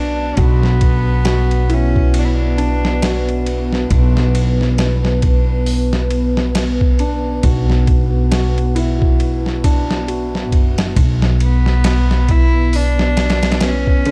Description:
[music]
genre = trip hop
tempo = 68 BPM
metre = 4/4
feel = swing 59% on 16ths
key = B minor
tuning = A4 = 441 Hz
[part]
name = rich cello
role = melody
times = 0.0-3.5, 11.4-14.1 s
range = B3 to E4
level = -26 LUFS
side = equal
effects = tape echo
[part]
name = dark analog pad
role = sustained chords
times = 0.0-14.1 s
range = B3 to B4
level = -26 LUFS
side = equal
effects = chorus
[part]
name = felt-muted upright piano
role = arpeggios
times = 0.0-14.1 s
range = D3 to F#4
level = -26 LUFS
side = equal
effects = vintage 12-bit sampler grit, tape echo
[part]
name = upright bass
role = bass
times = 0.0-14.1 s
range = F#1 to B1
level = -18 LUFS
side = equal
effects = tube saturation
[part]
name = boom bap sampler-style drum kit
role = drums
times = 0.4-14.1 s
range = hi-hat, kick drum, ride cymbal, snare drum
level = -20 LUFS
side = equal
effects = studio reverb
[sound]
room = light reverb, small room ambience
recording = dark, warm production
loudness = -15 LUFS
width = mono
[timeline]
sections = 0.0-11.0 A section; 11.0-14.1 B section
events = none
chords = 0.0 Bm

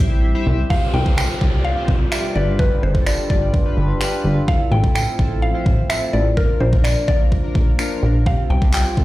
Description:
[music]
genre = dance-pop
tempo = 127 BPM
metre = 4/4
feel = straight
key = unclear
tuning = A4 = 439 Hz
[part]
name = chorused polysynth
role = accompaniment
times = 0.0-9.0 s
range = C4 to E5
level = -27 LUFS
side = left 1 dB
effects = sidechain pumping
[part]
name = sweeping resonant pad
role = sustained chords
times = 0.0-9.0 s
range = F3 to E5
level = -28 LUFS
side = equal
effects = chorus, phaser, sidechain pumping
[part]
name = plucky analog bass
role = bass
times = 0.0-9.0 s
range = G1 to C2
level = -18 LUFS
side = equal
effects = sidechain pumping
[part]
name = pop drum kit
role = drums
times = 0.0-9.0 s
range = finger snaps, handclaps, hi-hat, kick drum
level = -18 LUFS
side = equal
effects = overdrive
[part]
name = mallet-like synth pluck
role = melody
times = 0.7-9.0 s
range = Bb4 to G5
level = -24 LUFS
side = left 1 dB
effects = chorus, digital delay
[part]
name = downlifter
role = sound effects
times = 0.7-4.5 s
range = none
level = -30 LUFS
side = equal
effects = none
[part]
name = tambourine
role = percussion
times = 1.2-8.8 s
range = none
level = -32 LUFS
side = right 2 dB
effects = none
[sound]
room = little or no reverb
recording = played on a big sound system in a bare room, stone room reverb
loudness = -15 LUFS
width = side -17 dB against mid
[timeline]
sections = 0.7-9.0 A section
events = drums muted 0.2-0.7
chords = 0.0 C; 0.7 Csus4; 2.4 G7; 4.5 Fmaj7; 6.4 Bb; 8.3 Csus4

